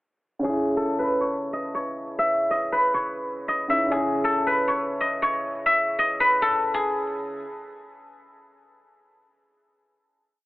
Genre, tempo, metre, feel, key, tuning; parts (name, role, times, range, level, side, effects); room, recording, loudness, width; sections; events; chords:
hip hop, trap; 138 BPM; 4/4; half-time; C# minor; A4 = 444 Hz
guzheng; melody; 0.4-9.0 s; G#4 to E5; -22 LUFS; equal; low-pass filter
dark grand piano; accompaniment; 0.4-7.4 s; C#3 to E4; -30 LUFS; equal; low-pass filter
moderate huge ambient reverb, RT60 4.6 s; telephone sound; -21 LUFS; side -18 dB against mid
0.4-7.4 breakdown
filter sweep 0.4-7.4
0.4 C#madd9; 3.9 C#m